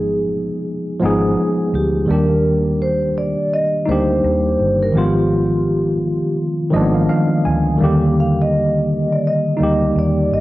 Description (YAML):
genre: lo-fi hip hop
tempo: 84 BPM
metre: 4/4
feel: swing 60% on 16ths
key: Eb major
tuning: A4 = 439 Hz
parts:
  - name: vibraphone with soft mallets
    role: melody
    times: 0.0-10.4 s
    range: G4 to F5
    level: -20 LUFS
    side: equal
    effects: low-pass filter, cassette tape
  - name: tine electric piano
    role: accompaniment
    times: 0.0-10.4 s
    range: D3 to Ab5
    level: -16 LUFS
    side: equal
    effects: overdrive, fast stereo tremolo, cassette tape, low-pass filter
  - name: vintage muted fingered electric bass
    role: bass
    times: 0.0-10.4 s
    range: G1 to Eb2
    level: -23 LUFS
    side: equal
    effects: tube saturation
room: moderate lush hall reverb, RT60 2.3 s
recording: home recording on cassette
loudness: -15 LUFS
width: side -17 dB against mid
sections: 0.0-10.4 A section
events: none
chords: 0.0 Abm6; 2.1 Ebmaj7; 4.9 Abm6; 7.8 Ebmaj7